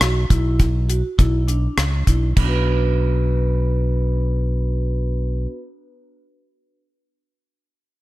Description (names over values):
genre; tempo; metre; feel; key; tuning
progressive instrumental, band music in an uneven meter; 102 BPM; 5/4; straight; B minor; A4 = 440 Hz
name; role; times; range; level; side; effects
vibraphone with medium mallets; arpeggios; 0.0-5.6 s; B3 to B4; -26 LUFS; right 1 dB; slapback echo
modern bright fingered electric bass; bass; 0.0-5.5 s; B1 to C#2; -19 LUFS; equal; none
deep reggae drum kit; drums; 0.0-2.5 s; crash cymbal, hi-hat, kick drum, rim click; -19 LUFS; equal; none
room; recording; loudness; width
light reverb, small room ambience; none; -17 LUFS; side -18 dB against mid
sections
0.0-2.4 A section; 2.4-5.3 B section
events
none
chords
0.0 Bm